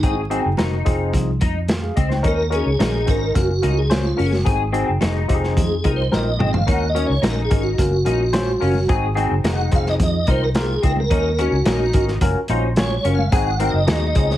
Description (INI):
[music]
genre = uptempo 1960s-style soul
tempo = 108 BPM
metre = 4/4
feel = straight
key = unclear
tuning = A4 = 440 Hz
[part]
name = tonewheel organ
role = melody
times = 0.0-14.4 s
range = Eb4 to Gb5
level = -23 LUFS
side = right 1 dB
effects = chorus vibrato, fast rotary speaker, plate reverb
[part]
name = barky tine electric piano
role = accompaniment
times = 0.0-14.4 s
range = C4 to F5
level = -24 LUFS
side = left 2 dB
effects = overdrive, phaser
[part]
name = electric guitar through a small old amp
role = riff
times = 0.0-14.4 s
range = C4 to Ab4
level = -26 LUFS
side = left 4 dB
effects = ensemble chorus
[part]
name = vintage muted fingered electric bass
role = bass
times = 0.0-14.4 s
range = F1 to F2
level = -22 LUFS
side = equal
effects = none
[part]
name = crunchy breakbeat drum kit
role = drums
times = 0.0-14.4 s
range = hi-hat, kick drum, snare drum, toms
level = -21 LUFS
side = equal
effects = none
[part]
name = congas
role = percussion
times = 0.3-14.0 s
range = none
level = -30 LUFS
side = right 2 dB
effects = none
[sound]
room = moderate club reverb, RT60 0.6 s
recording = heavily compressed radio sound, multiband compression, vinyl crackle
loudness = -16 LUFS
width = side -13 dB against mid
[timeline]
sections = 0.0-14.4 A section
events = tonewheel organ solo 0.0-14.4; drum fill 6.1-6.7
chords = 0.0 Ab7; 0.9 Fm7; 2.2 Ebm7; 3.4 Gbmaj7; 4.5 Ab7; 5.3 Fm7; 6.7 Ebm7; 7.8 Gbmaj7; 8.9 Ab7; 9.7 Fm7; 11.1 Ebm7; 12.2 Gbmaj7; 13.3 Ab7